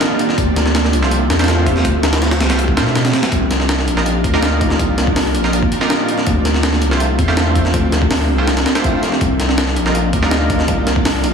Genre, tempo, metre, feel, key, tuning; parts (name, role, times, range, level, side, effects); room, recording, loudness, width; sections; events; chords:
drum and bass, jungle; 163 BPM; 4/4; straight; A4 = 441 Hz
band-passed chord stab; stabs; 0.0-11.3 s; G3 to C5; -22 LUFS; right 3 dB; chorus, dub echo
jungle sampler-style drum kit; drums; 0.0-11.3 s; hi-hat, kick drum, snare drum; -16 LUFS; equal; overdrive
saturated sub bass; bass; 0.4-11.3 s; Bb1 to B2; -18 LUFS; equal
light reverb; heavily compressed radio sound, multiband compression, studio reverb; -13 LUFS; side -6 dB against mid
0.0-11.3 A section
0.4 Dm11; 3.3 Cm11; 6.3 Dm11; 9.2 Cm11